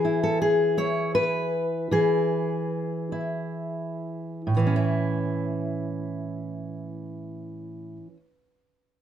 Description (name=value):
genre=folk, solo fingerstyle acoustic guitar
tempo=42-54 BPM (dotted quarters)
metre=6/8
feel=straight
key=A major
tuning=A4 = 441 Hz
part: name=fingerpicked steel-string acoustic guitar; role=solo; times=0.0-8.2 s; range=A2 to C#5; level=-24 LUFS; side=equal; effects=slapback echo
room=light reverb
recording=none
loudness=-24 LUFS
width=side -9 dB against mid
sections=0.0-4.5 A section; 4.5-9.0 B section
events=slowing down 0.0-4.5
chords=0.0 N.C.; 4.5 A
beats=0.78 | 1.91 3.12 | 4.46 5.88 | 7.29